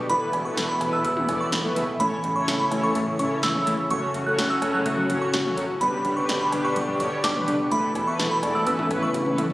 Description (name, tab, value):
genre	synth-pop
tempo	126 BPM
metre	4/4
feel	straight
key	A mixolydian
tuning	A4 = 440 Hz
part	warm analog pad	sustained chords	0.0-9.5 s	A2 to A4	-28 LUFS	equal	lush chorus, shimmer reverb
part	glassy synth bell	second line	0.1-9.2 s	B5 to F#6	-26 LUFS	right 1 dB	chorus, analog delay, shimmer reverb
part	mellow synth brass	accompaniment	0.1-9.5 s	B3 to D5	-28 LUFS	equal	chorus, shimmer reverb
part	fat analog bass	bass	0.1-9.5 s	E1 to A2	-32 LUFS	equal	none
part	electro analog drum machine	drums	0.1-9.5 s	cowbell, hi-hat, kick drum, snare drum, toms	-30 LUFS	equal	none
part	warbly dusty pluck	arpeggios	2.0-9.5 s	G3 to F#4	-32 LUFS	equal	chorus, analog delay, shimmer reverb
room	wet lush hall reverb, RT60 1.9 s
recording	recorded on a phone in the room, studio reverb, compression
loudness	-21 LUFS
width	side -17 dB against mid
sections	0.0-9.5 A section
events	drum fill 9.1-9.5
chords	0.1 Esus4; 2.0 A; 3.9 F#m; 5.8 G; 7.7 Esus4; 8.7 Aadd9